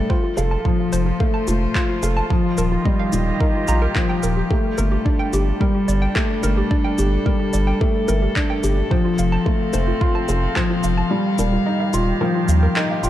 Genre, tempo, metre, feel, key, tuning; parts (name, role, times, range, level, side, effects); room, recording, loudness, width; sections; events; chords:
piano and strings electronica; 109 BPM; 4/4; straight; A4 = 440 Hz
dark string quartet; sustained chords; 0.0-13.1 s; Eb3 to F5; -27 LUFS; equal; sidechain pumping
felt-muted upright piano; riff; 0.0-13.1 s; F3 to A4; -21 LUFS; left 2 dB; digital delay
warbly dusty pluck; arpeggios; 0.1-13.1 s; F4 to Bb5; -29 LUFS; right 2 dB; chorus, sidechain pumping, digital delay
electronic kick drum; drums; 0.1-10.7 s; -20 LUFS; equal
round analog bass; bass; 0.4-13.1 s; Eb1 to Eb2; -20 LUFS; equal; sidechain pumping
electronic shaker and handclaps; drums; 0.4-13.1 s; -27 LUFS; equal
light reverb; dark, warm production; -17 LUFS; side -13 dB against mid
0.0-13.1 A section
kick drops out 11.1-13.1
0.1 F; 2.3 Ebadd9; 4.5 Gsus2; 8.9 F; 11.1 Ebadd9